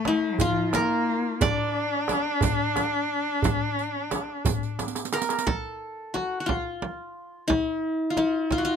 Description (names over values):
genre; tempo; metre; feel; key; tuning
Arabic maqam ensemble; 59 BPM (dotted quarters); 6/8; straight; D maqam saba; A4 = 440 Hz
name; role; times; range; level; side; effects
qanun; melody; 0.0-8.8 s; E4-50c to D5; -26 LUFS; left 1 dB; none
warm cello; second line; 0.0-4.8 s; F3 to D4; -27 LUFS; left 2 dB; none
darbuka; percussion; 0.1-5.4 s; none; -29 LUFS; right 1 dB; none
frame drum; percussion; 0.1-8.7 s; none; -28 LUFS; right 4 dB; none
riq; percussion; 0.4-5.5 s; none; -34 LUFS; right 9 dB; none
room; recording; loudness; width
little or no reverb; close, detailed microphones; -24 LUFS; side -7 dB against mid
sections
0.0-5.5 A section; 5.5-8.8 B section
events
drum fill 4.8-5.5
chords
none